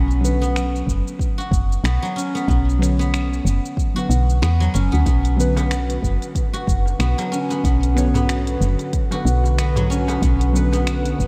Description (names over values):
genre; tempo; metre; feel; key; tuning
organic downtempo; 93 BPM; 4/4; swing 57% on 16ths; B minor; A4 = 440 Hz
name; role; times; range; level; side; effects
deep mellow chord stab; accompaniment; 0.0-11.3 s; D3 to C#5; -30 LUFS; equal; subtle chorus, sidechain pumping, delay
guzheng; arpeggios; 0.0-11.3 s; F#3 to F#4; -27 LUFS; equal; delay
woody FM bass; bass; 0.0-11.3 s; F#1 to E2; -21 LUFS; equal; sidechain pumping
organic electronic drum kit; drums; 0.1-11.3 s; cabasa, finger snaps, hi-hat; -35 LUFS; equal; none
electronic kick drum; drums; 0.9-11.3 s; none; -23 LUFS; equal; none
warbly tape-like pad; sustained chords; 5.4-11.3 s; D3 to F#5; -30 LUFS; equal; chorus, built-in reverb, sidechain pumping
darbuka; percussion; 5.6-10.8 s; none; -32 LUFS; equal; none
room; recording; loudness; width
moderate cathedral reverb, RT60 5.0 s; dreamy mix soaked in reverb; -19 LUFS; mono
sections
0.0-11.3 A section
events
none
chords
0.0 Bm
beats
0.55 1.20 1.84 | 2.49 3.13 3.78 4.42 | 5.07 5.71 6.36 7.00 | 7.65 8.29 8.94 9.58 | 10.23 10.87